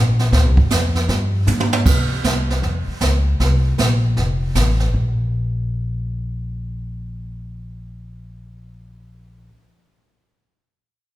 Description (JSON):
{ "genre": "jazz piano trio", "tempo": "156 BPM", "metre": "4/4", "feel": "swing 65% on 8ths", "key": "unclear", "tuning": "A4 = 438 Hz", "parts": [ { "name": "upright bass", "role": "bass", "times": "0.0-9.5 s", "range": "F1 to C3", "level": "-19 LUFS", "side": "equal", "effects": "none" }, { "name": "jazz brush drum kit", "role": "drums", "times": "0.2-5.2 s", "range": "brushed snare drum, crash cymbal, hi-hat, kick drum, snare drum, toms", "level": "-20 LUFS", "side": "right 2 dB", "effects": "none" } ], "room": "wet recital hall reverb, RT60 1.6 s", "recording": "recorded in a church or concert hall", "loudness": "-16 LUFS", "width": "side -15 dB against mid", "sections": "0.0-1.9 A section; 1.9-4.9 B section; 4.9-8.0 C section", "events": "drum fill 1.5-1.9", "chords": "none" }